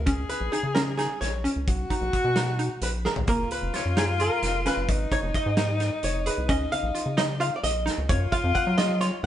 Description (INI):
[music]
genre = progressive instrumental, band music in an uneven meter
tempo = 262 BPM (eighths)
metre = 7/8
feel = straight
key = unclear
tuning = A4 = 440 Hz
[part]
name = clear alto saxophone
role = second line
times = 0.0-9.3 s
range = D#4 to G#4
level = -30 LUFS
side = left 2 dB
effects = none
[part]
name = rubbery square bass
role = bass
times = 0.0-9.3 s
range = E#1 to F#3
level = -28 LUFS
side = equal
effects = none
[part]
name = hollow square pluck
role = arpeggios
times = 0.1-9.3 s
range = A#3 to G#4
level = -31 LUFS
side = right 2 dB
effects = chorus
[part]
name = loose indie drum kit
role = drums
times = 0.1-9.3 s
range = hi-hat, kick drum, snare drum, toms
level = -29 LUFS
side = equal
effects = none
[part]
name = archtop guitar, miked and amplified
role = accompaniment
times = 0.3-9.3 s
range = G#4 to F#5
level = -29 LUFS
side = right 1 dB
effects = none
[sound]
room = moderate stone room reverb, RT60 1.3 s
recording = band playing live in one room, nothing above 10.4 kHz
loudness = -23 LUFS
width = side -11 dB against mid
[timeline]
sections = 0.0-9.3 A section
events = hollow-body jazz guitar solo 0.0-9.3; drum fill 3.0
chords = 0.1 C#sus2; 3.3 F#maj7; 4.9 G#5; 6.5 C#sus2; 8.1 D#m9/E#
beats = | 0.07 0.30 0.53 0.76 0.98 1.21 1.44 | 1.67 1.90 2.13 2.36 2.59 2.82 3.05 | 3.28 3.51 3.74 3.97 4.20 4.43 4.66 | 4.88 5.11 5.34 5.57 5.80 6.03 6.26 | 6.49 6.72 6.95 7.18 7.41 7.63 7.86 | 8.09 8.32 8.55 8.78 9.01 9.24